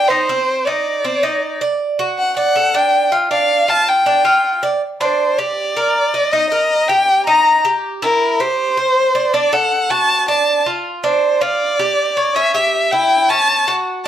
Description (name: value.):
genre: latin.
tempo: 159 BPM.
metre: 4/4.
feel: straight.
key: G minor.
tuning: A4 = 440 Hz.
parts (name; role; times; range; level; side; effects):
warm violin; melody; 0.0-14.1 s; Bb4 to Bb5; -15 LUFS; left 1 dB; none.
Cuban tres; arpeggios; 0.0-14.1 s; C4 to Eb5; -18 LUFS; right 2 dB; none.
room: moderate studio reverb, RT60 0.9 s.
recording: none.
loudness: -13 LUFS.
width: side -10 dB against mid.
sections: 0.0-4.8 A section; 4.8-14.1 B section.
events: none.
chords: 0.3 Cmadd9; 1.8 D; 3.3 G5; 4.8 Gm; 6.3 Eb; 7.8 C/E; 9.3 D; 10.8 G5; 12.4 A7.